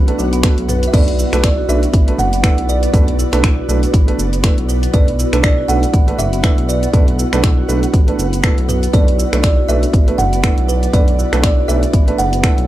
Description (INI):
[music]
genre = afro house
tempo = 120 BPM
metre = 4/4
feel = swing 57% on 16ths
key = B minor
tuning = A4 = 441 Hz
[part]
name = buzzing kalimba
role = melody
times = 0.0-12.7 s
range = B4 to F#5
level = -21 LUFS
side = right 2 dB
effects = analog delay
[part]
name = ethereal airy pad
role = sustained chords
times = 0.0-12.7 s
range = B3 to F#5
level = -26 LUFS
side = right 1 dB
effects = ensemble chorus, built-in reverb, tremolo, sidechain pumping
[part]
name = marimba with medium mallets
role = arpeggios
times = 0.0-12.6 s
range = F#3 to B4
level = -24 LUFS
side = equal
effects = sidechain pumping, analog delay
[part]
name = smooth synth bass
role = bass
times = 0.0-12.7 s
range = F#1 to B1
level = -18 LUFS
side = equal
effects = sidechain pumping
[part]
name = felt-muted upright piano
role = stabs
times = 0.1-12.5 s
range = A3 to B4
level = -23 LUFS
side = right 4 dB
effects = sidechain pumping, analog delay
[part]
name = house drum kit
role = drums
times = 0.1-12.7 s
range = crash cymbal, finger snaps, hi-hat, shaker, toms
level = -22 LUFS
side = equal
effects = small room ambience
[part]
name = electronic kick drum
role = drums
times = 0.4-12.5 s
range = none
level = -13 LUFS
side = equal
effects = small room ambience
[sound]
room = little or no reverb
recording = dry, gritty hardware recording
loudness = -12 LUFS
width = side -14 dB against mid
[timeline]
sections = 0.0-12.7 A section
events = none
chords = 0.0 Bm7